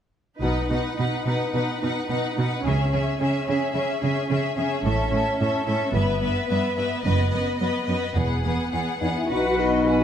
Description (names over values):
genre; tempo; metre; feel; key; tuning
cinematic, heroic adventure film score; 109 BPM; 4/4; straight; B mixolydian; A4 = 440 Hz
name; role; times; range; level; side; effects
rich symphonic violin section; melody; 0.4-10.0 s; D#5 to F#5; -31 LUFS; left 2 dB; none
clear symphonic violin section; second line; 0.4-10.0 s; F#4 to B4; -29 LUFS; left 5 dB; none
warm studio viola section; accompaniment; 0.4-10.0 s; B3 to B4; -27 LUFS; equal; none
rich symphonic cello section; bass; 0.4-10.0 s; E2 to C#3; -26 LUFS; right 2 dB; none
rich symphonic double bass section; bass; 0.4-10.0 s; E1 to C#2; -28 LUFS; right 2 dB; none
mellow French horn section; sustained chords; 9.0-10.0 s; D#4 to E4; -23 LUFS; left 3 dB; none
clear oboe; second line; 9.3-10.0 s; B4; -29 LUFS; left 1 dB; none
flute section; second line; 9.3-10.0 s; F#5 to G#5; -30 LUFS; left 4 dB; none
mellow clarinet; second line; 9.3-10.0 s; F#4; -32 LUFS; left 3 dB; none
room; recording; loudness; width
wet recital hall reverb, RT60 1.4 s; none; -21 LUFS; side -9 dB against mid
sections
0.4-9.3 A section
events
none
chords
0.4 B; 2.6 C#m; 4.9 A; 6.0 Em/G; 7.1 B/F#; 8.2 Eadd9; 9.3 B